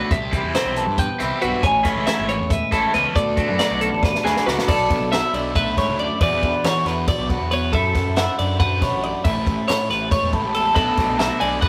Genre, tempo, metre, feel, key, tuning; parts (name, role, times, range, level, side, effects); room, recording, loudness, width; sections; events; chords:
math rock and midwest emo; 276 BPM (eighths); 7/8; straight; D major; A4 = 440 Hz
clean electric guitar; accompaniment; 0.0-11.7 s; D2 to F#4; -29 LUFS; equal
twelve-string electric guitar; arpeggios; 0.0-11.7 s; F#4 to G#5; -24 LUFS; equal; spring reverb
cranked stack guitar; riff; 0.0-4.7, 10.7-11.7 s; B2 to F#4; -29 LUFS; equal; overdrive, phaser
twelve-string electric guitar; melody; 0.1-11.7 s; B4 to B5; -29 LUFS; equal
fuzz picked electric bass; bass; 0.1-11.7 s; G#1 to E3; -29 LUFS; equal; overdrive
compact cocktail drum kit; drums; 0.1-11.7 s; crash cymbal, hi-hat, kick drum, ride cymbal, snare drum; -26 LUFS; equal
light reverb; rough rehearsal-room recording; -20 LUFS; mono
0.0-4.7 A section; 4.7-11.7 B section
drum fill 4.0-4.7
0.1 Cmaj7; 1.6 Amaj9; 3.2 D69; 4.7 Bm11; 6.2 Esus2; 7.7 Dmaj9/F#; 9.2 Amaj9; 10.8 Bm11